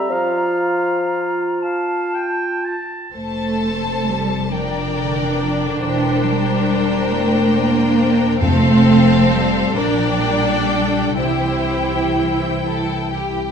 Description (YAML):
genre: classical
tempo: 39-47 BPM (dotted quarters)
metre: 6/8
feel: rubato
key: F major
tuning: A4 = 441 Hz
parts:
  - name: bright clarinet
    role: second line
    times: 0.0-2.8 s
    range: F4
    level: -23 LUFS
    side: equal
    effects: none
  - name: hollow concert flute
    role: second line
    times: 0.0-2.8 s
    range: A5 to Bb5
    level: -25 LUFS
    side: left 2 dB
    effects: none
  - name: warm oboe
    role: second line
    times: 0.0-3.1 s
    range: E5 to A5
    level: -25 LUFS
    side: right 2 dB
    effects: none
  - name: warm bassoon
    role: accompaniment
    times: 0.0-1.6 s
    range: F3 to G3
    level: -22 LUFS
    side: right 1 dB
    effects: none
  - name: rich studio violin section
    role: second line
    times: 3.1-13.5 s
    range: G4 to D5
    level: -22 LUFS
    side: left 3 dB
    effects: none
  - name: rich symphonic cello section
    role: bass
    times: 3.1-13.5 s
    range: D3 to Bb3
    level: -19 LUFS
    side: equal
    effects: none
  - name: warm symphonic double bass section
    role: bass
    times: 3.1-13.5 s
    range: E1 to C2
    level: -23 LUFS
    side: right 4 dB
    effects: none
  - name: clear studio violin section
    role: melody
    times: 3.2-13.5 s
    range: F5 to A5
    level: -26 LUFS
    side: left 6 dB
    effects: none
  - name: rich symphonic viola section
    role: accompaniment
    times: 4.5-13.3 s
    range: C4 to E4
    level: -22 LUFS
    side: equal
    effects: none
  - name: timpani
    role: percussion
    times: 8.4-9.7 s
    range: F2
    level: -22 LUFS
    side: left 1 dB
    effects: none
room: wet scoring stage reverb, RT60 1.5 s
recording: minimal, uncompressed stereo recording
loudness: -15 LUFS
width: side -7 dB against mid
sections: 0.0-3.1 A section; 3.1-13.5 A section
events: none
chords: 0.1 F; 4.5 Gm7/F; 5.8 C7/E; 8.4 F; 9.8 Gm/Bb; 11.2 C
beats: | 0.10 1.63 | 3.15 4.51 | 5.83 7.13 | 8.43 9.77 | 11.19 12.64